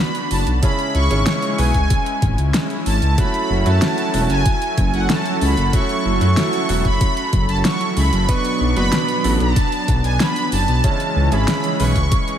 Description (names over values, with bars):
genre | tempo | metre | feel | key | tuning
synthwave | 94 BPM | 4/4 | straight | F# minor | A4 = 440 Hz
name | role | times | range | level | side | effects
soft supersaw | melody | 0.0-12.4 s | F#5 to C#6 | -22 LUFS | right 1 dB | digital delay
warm analog pad | sustained chords | 0.0-12.4 s | E3 to A4 | -24 LUFS | right 1 dB | chorus, tremolo, sidechain pumping
pop drum kit | drums | 0.1-12.4 s | hi-hat, snare drum | -24 LUFS | equal | overdrive, slapback echo
dark detuned saw bass | bass | 0.3-12.1 s | E1 to F#2 | -18 LUFS | equal | none
bright concert grand piano | stabs | 0.6-11.9 s | B2 to C#5 | -26 LUFS | right 3 dB | slapback echo
electronic kick drum | drums | 0.6-12.2 s | none | -18 LUFS | equal | overdrive
room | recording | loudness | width
moderate lush hall reverb, RT60 2.8 s | big arena sound | -15 LUFS | side -9 dB against mid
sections
0.0-12.4 A section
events
none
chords
0.0 Bm; 0.6 C#m; 3.2 F#m7; 8.3 Bm; 10.8 C#m